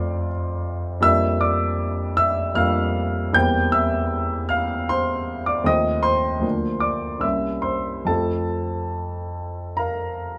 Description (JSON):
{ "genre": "classical, romantic character piece for solo piano", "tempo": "77 BPM", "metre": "3/4", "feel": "uneven beats, rubato", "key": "F major", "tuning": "A4 = 442 Hz", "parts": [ { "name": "warm baby grand piano", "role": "solo", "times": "0.0-10.4 s", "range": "C2 to G6", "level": "-22 LUFS", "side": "equal", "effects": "none" } ], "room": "light reverb", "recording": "none", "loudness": "-22 LUFS", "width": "mono", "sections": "0.0-10.4 A section", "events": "none", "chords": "0.0 F; 1.0 Gm7/F; 3.4 C7/E; 5.7 F7/Eb; 6.4 Bb/D; 7.2 C7b9; 8.1 F" }